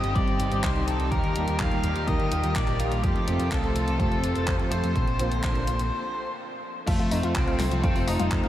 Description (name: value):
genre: italo disco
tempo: 125 BPM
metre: 4/4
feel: straight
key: unclear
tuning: A4 = 440 Hz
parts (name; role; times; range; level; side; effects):
- octave-fuzz lead guitar; melody; 0.0-8.5 s; A3 to F5; -31 LUFS; left 1 dB; distortion, vintage 12-bit sampler grit, tape echo
- rich chamber string section; sustained chords; 0.0-8.5 s; Bb2 to A4; -31 LUFS; left 1 dB; vintage 12-bit sampler grit
- picked electric bass with an envelope filter; bass; 0.0-8.5 s; F1 to F2; -28 LUFS; equal; none
- gated 80s digital drum machine; drums; 0.0-8.5 s; crash cymbal, handclaps, hi-hat, toms; -35 LUFS; left 1 dB; gated reverb, overdrive, small room ambience
- analog synth brass; stabs; 0.2-8.5 s; G3 to C5; -32 LUFS; right 2 dB; chorus, tape echo
- electronic kick drum; drums; 0.2-8.4 s; none; -28 LUFS; equal; small room ambience
- analog pluck; arpeggios; 6.9-8.5 s; F3 to F5; -33 LUFS; left 2 dB; chorus, tape echo
room: moderate huge ambient reverb, RT60 9.4 s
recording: dreamy mix soaked in reverb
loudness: -23 LUFS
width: side -12 dB against mid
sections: 0.0-6.9 A section; 6.9-8.5 B section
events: filter sweep on analog polysynth 0.0-6.9; break 5.9-6.9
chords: 0.0 Cm; 1.1 Eb; 3.0 F; 5.0 Bbadd9; 6.9 F